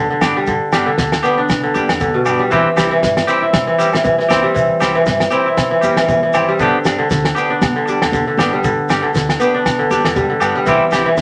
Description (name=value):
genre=highlife guitar band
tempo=118 BPM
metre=4/4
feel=swing 55% on 16ths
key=G major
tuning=A4 = 441 Hz
part: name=kora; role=arpeggios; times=0.0-11.2 s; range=B2 to E4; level=-18 LUFS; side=equal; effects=none
part: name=hollow-body short-scale fingered electric bass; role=bass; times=0.0-11.2 s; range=E1 to G2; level=-30 LUFS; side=equal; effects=none
part: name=semi-hollow electric guitar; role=accompaniment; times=0.2-11.1 s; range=E3 to G4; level=-21 LUFS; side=equal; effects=none
part: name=damped 70s drum kit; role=drums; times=0.2-11.2 s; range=kick drum, snare drum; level=-22 LUFS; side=equal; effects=none
part: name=agogo bells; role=percussion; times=0.2-11.1 s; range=none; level=-25 LUFS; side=equal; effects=none
part: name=congas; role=percussion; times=0.2-11.0 s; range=none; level=-28 LUFS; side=equal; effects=none
part: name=shekere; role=percussion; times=0.2-11.2 s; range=none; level=-31 LUFS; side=equal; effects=none
room=wet studio reverb, RT60 0.7 s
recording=none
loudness=-15 LUFS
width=mono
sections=0.0-11.2 A section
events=none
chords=0.0 G; 2.5 C; 6.6 G; 10.7 C